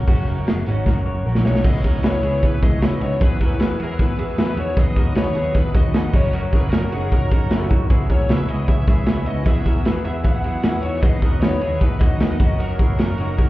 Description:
jangly indie pop; 153 BPM; 4/4; straight; A4 = 440 Hz
overdriven combo organ; accompaniment; 0.0-13.5 s; A#3 to B4; -34 LUFS; right 3 dB
picked twelve-string acoustic guitar; accompaniment; 0.0-13.5 s; F#2 to G#4; -30 LUFS; right 3 dB
electric guitar through a small old amp; arpeggios; 0.0-13.5 s; B3 to C#5; -30 LUFS; left 3 dB; tape echo
vintage muted picked electric bass; bass; 0.0-13.5 s; F#1 to E2; -22 LUFS; equal
raw garage drum kit; drums; 0.1-13.5 s; crash cymbal, hi-hat, kick drum, ride cymbal, snare drum; -18 LUFS; equal
smooth overdriven lead guitar; melody; 1.5-13.5 s; G#4 to F#5; -28 LUFS; left 1 dB
warm analog pad; sustained chords; 1.6-13.5 s; E4 to E6; -36 LUFS; right 1 dB
little or no reverb; heard muffled through a wall, club reverb, EQ; -16 LUFS; side -16 dB against mid
0.1-1.6 A section; 1.6-13.5 B section
drum fill 0.9-1.6
0.1 F#; 1.6 C#m7; 3.2 Eadd9; 4.8 B/D#; 6.1 F#; 7.9 C#m7; 9.5 Eadd9; 11.0 B/D#; 12.4 F#
| 0.08 0.47 0.86 1.25 | 1.64 2.04 2.43 2.82 | 3.21 3.60 3.99 4.38 | 4.77 5.16 5.55 5.94 | 6.33 6.72 7.11 7.50 | 7.90 8.29 8.68 9.07 | 9.46 9.85 10.24 10.64 | 11.03 11.42 11.81 12.21 | 12.60 12.99 13.38

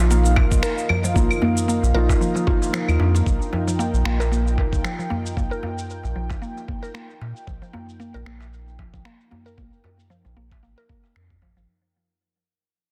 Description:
organic downtempo; 114 BPM; 4/4; swing 56% on 16ths; A4 = 441 Hz
felt-muted upright piano; accompaniment; 0.0-3.3 s; F3 to F4; -29 LUFS; equal; sidechain pumping, digital delay
warm analog pad; sustained chords; 0.0-11.6 s; Eb4 to G5; -32 LUFS; equal; chorus, sidechain pumping
warm sub bass; bass; 0.0-11.7 s; Ab1 to Bb2; -23 LUFS; equal; tube saturation, sidechain pumping
mallet-like synth pluck; arpeggios; 0.1-11.7 s; F3 to Bb4; -30 LUFS; equal; chorus, phaser, digital delay
electronic cabasa, claves and finger snaps; drums; 0.1-11.7 s; -31 LUFS; equal; low-pass filter on perc, soft clipping on snare, low-pass filter on snare, low-pass filter on room
electronic kick drum; drums; 0.4-11.4 s; -25 LUFS; equal
darbuka; percussion; 0.4-11.5 s; -32 LUFS; equal
light reverb, digital ambience; dense, heavily limited modern master; -21 LUFS; mono
0.0-11.7 A section
fade-out 0.0-11.7; filter sweep on synth pluck 0.0-11.7
0.0 Bbsus4
0.10 0.63 | 1.16 1.68 2.21 2.74 | 3.26 3.79 4.32 4.84 | 5.37 5.89 6.42 6.95 | 7.47 8.00 8.53 9.05 | 9.58 10.10 10.63 11.16

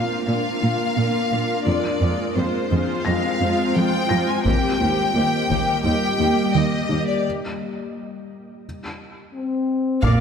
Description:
cinematic, hybrid orchestral and electronic film score; 86 BPM; 4/4; straight; A4 = 440 Hz
clear symphonic violin section; melody; 0.0-7.2 s; C5 to Ab5; -24 LUFS; left 4 dB
rich studio viola section; accompaniment; 0.0-10.2 s; Ab3 to D5; -28 LUFS; right 2 dB
ethereal airy pad; sustained chords; 0.0-10.2 s; G3 to Eb5; -25 LUFS; left 1 dB; ensemble chorus, built-in reverb
tight sequenced synth; arpeggios; 0.0-10.2 s; Eb3 to Bb4; -28 LUFS; equal; chorus, phaser
felt-muted upright piano; texture; 0.0-10.2 s; D5 to Bb6; -34 LUFS; left 2 dB; tape echo
rich symphonic cello section; bass; 0.3-10.2 s; Eb2 to Bb2; -24 LUFS; right 2 dB
taiko ensemble; drums; 4.5-5.8, 10.0-10.2 s; -27 LUFS; equal
mellow French horn section; sustained chords; 9.3-10.2 s; Bb3 to C4; -21 LUFS; left 4 dB
clear symphonic violin section; second line; 10.0-10.2 s; F5; -28 LUFS; left 2 dB
rubbery square bass; riff; 10.0-10.2 s; Bb2; -21 LUFS; right 2 dB
pure sine sub bass; bass; 10.0-10.2 s; Bb1; -24 LUFS; equal
sub drop; sound effects; 10.0-10.2 s; -24 LUFS; equal
moderate concert hall reverb, RT60 2.2 s; -18 LUFS; side -7 dB against mid
0.0-10.0 A section
break 7.2-10.0; band accent 10.0; impact 10.0
0.0 Bb; 1.7 Fm; 4.5 Eb; 7.2 N.C.
0.27 0.96 | 1.66 2.36 3.06 3.75 | 4.45 5.15 5.85 6.54 | 7.24 7.94 8.64 9.34 | 10.03

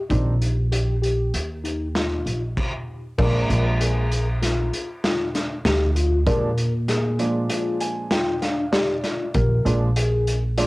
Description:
progressive instrumental, band music in an uneven meter; 97 BPM; 5/4; straight; Bb mixolydian; A4 = 440 Hz
mellow tine electric piano; arpeggios; 0.0-10.7 s; D4 to Bb4; -26 LUFS; left 2 dB; phaser, cassette tape, tape echo, plate reverb
warm grand piano; accompaniment; 0.1-10.7 s; Bb2 to Ab5; -26 LUFS; right 2 dB; cassette tape
upright bass; bass; 0.1-10.7 s; Bb1 to Bb2; -21 LUFS; equal
raw garage drum kit; drums; 0.1-10.7 s; crash cymbal, hi-hat, kick drum, snare drum; -26 LUFS; equal
light reverb; home recording on cassette; -20 LUFS; side -21 dB against mid
0.0-3.2 A section; 3.2-10.7 B section
stop 2.6-3.2; grand piano fill 7.5-9.3
0.0 Cm/Bb (rootless); 3.2 Bb7
| 0.10 0.72 1.33 1.95 2.57 | 3.18 3.80 4.42 5.03 5.65 | 6.27 6.88 7.50 8.12 8.73 | 9.35 9.96 10.58

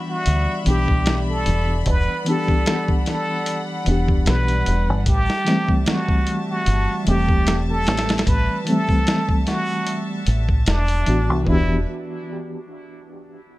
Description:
trip hop; 75 BPM; 4/4; swing 55% on 16ths; E minor; A4 = 440 Hz
trumpet with plunger mute; melody; 0.0-11.8 s; D4 to B4; -25 LUFS; equal; dub echo
reed electric piano; accompaniment; 0.0-11.8 s; E3 to G4; -24 LUFS; left 1 dB; medium tremolo, harmonic tremolo, vintage 12-bit sampler grit, tape echo
dark studio string section; sustained chords; 0.0-11.8 s; G3 to B5; -29 LUFS; equal
deep dub fingered electric bass; bass; 0.3-11.8 s; E1 to D2; -20 LUFS; equal
boom bap sampler-style drum kit; drums; 0.3-11.6 s; hi-hat, kick drum, snare drum; -21 LUFS; equal
little or no reverb; -17 LUFS; side -18 dB against mid
0.0-11.5 A section; 11.5-13.6 B section
0.0 Em7; 5.1 Am7; 11.5 Em7
0.26 1.06 | 1.86 2.66 3.46 4.26 | 5.06 5.86 6.66 7.46 | 8.26 9.06 9.86 10.66 | 11.46

